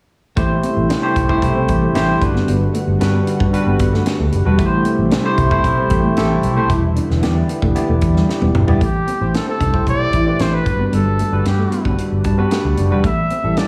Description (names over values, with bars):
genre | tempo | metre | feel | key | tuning
polished 1980s jazz-funk pop | 114 BPM | 4/4 | straight | A dorian | A4 = 440 Hz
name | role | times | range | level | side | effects
barky tine electric piano | accompaniment | 0.4-13.7 s | G3 to A5 | -22 LUFS | equal | lush chorus
lush unison pad | sustained chords | 0.4-8.8 s | C3 to F#4 | -25 LUFS | equal | chorus
electric guitar at the edge of break-up | riff | 0.4-13.6 s | G3 to E4 | -27 LUFS | equal | subtle chorus
vintage muted fingered electric bass | bass | 0.4-13.5 s | E1 to G2 | -20 LUFS | equal | none
tight funk drum kit | drums | 0.4-13.7 s | hi-hat, kick drum, snare drum, toms | -24 LUFS | equal | none
warm trumpet | melody | 8.8-13.7 s | G4 to E5 | -24 LUFS | equal | none
room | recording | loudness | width
moderate plate reverb, RT60 2.0 s | dreamy mix soaked in reverb | -16 LUFS | mono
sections
0.4-8.8 A section; 8.8-13.7 B section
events
drum fill 8.3-8.8; tine electric piano fill 12.0-13.0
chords
0.4 Am7; 2.2 Gmaj7; 4.6 Am7; 6.7 Em7; 8.8 Am7; 10.7 Gmaj7; 13.0 Am7